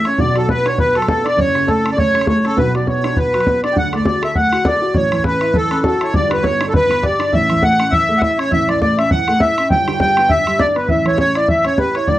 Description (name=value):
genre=celtic folk, Celtic reel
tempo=202 BPM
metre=4/4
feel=swing 57% on 8ths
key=B minor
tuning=A4 = 440 Hz
part: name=accordion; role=melody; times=0.0-12.2 s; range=A4 to G5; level=-16 LUFS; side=right 1 dB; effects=light tremolo tuning
part: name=melodica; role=second line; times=0.0-12.2 s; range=A4 to G5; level=-22 LUFS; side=left 3 dB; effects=none
part: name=dark upright piano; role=accompaniment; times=0.0-12.2 s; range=D1 to A4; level=-19 LUFS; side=right 1 dB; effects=none
part: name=bodhran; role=percussion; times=0.1-12.2 s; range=none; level=-20 LUFS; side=equal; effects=none
room=wet small room reverb, RT60 0.5 s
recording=worn, warbling old tape, cassette tape, warbly pitch drift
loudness=-13 LUFS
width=side -14 dB against mid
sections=0.0-3.8 A section; 3.8-12.2 B section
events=none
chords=0.2 Bm; 1.4 F#m; 2.6 Bm; 3.8 D; 4.9 A6; 6.1 G; 7.3 A; 9.7 G; 10.9 A7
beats=| 0.20 0.49 0.79 1.09 | 1.39 1.68 1.98 2.28 | 2.58 2.87 3.17 3.47 | 3.76 4.06 4.36 4.65 | 4.95 5.25 5.54 5.84 | 6.13 6.43 6.73 7.03 | 7.32 7.62 7.92 8.21 | 8.51 8.81 9.10 9.40 | 9.70 10.00 10.29 10.59 | 10.89 11.19 11.48 11.78 | 12.08